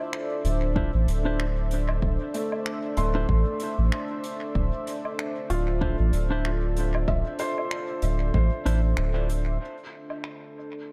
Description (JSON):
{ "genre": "ambient dub", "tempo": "95 BPM", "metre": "4/4", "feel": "swing 57% on 16ths", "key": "D minor", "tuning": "A4 = 440 Hz", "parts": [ { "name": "warm analog pad", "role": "sustained chords", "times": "0.0-10.9 s", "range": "D4 to E5", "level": "-36 LUFS", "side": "equal", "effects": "chorus" }, { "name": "felt-muted upright piano", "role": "arpeggios", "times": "0.0-9.6 s", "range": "A3 to C6", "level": "-36 LUFS", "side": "equal", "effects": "tape echo" }, { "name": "mellow electric guitar", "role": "stabs", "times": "0.0-8.8 s", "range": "D4 to C5", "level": "-36 LUFS", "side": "equal", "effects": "dub echo" }, { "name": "soft-mallet drum kit", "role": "drums", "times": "0.1-10.4 s", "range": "finger snaps, hi-hat, woodblock", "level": "-40 LUFS", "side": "equal", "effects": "low-pass filter on hats, low-pass filter on snare, low-pass filter on perc, low-pass filter on room, dub echo" }, { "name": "soft dub sub bass", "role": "bass", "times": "0.4-9.6 s", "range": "D1 to A1", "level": "-26 LUFS", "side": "equal", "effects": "none" }, { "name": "electronic kick drum", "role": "drums", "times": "0.8-8.5 s", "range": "none", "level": "-30 LUFS", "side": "equal", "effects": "overdrive" } ], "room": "studio ambience", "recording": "echo-heavy mix", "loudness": "-26 LUFS", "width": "mono", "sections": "0.0-9.6 A section; 9.6-10.9 B section", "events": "none", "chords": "0.0 Dm9; 9.6 D7sus2" }